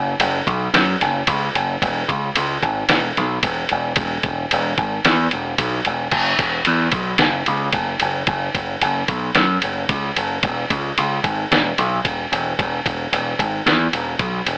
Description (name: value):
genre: rock, shoegaze and dream pop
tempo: 111 BPM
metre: 4/4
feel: straight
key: E major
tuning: A4 = 440 Hz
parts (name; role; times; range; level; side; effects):
- growling picked electric bass; bass; 0.0-14.6 s; E1 to F#2; -20 LUFS; equal; overdrive
- detuned 8-bit digital drum machine; drums; 0.2-14.6 s; crash cymbal, kick drum, ride cymbal, snare drum; -19 LUFS; equal; none
room: little or no reverb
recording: AM radio sound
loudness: -17 LUFS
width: side -26 dB against mid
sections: 0.0-14.6 A section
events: none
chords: none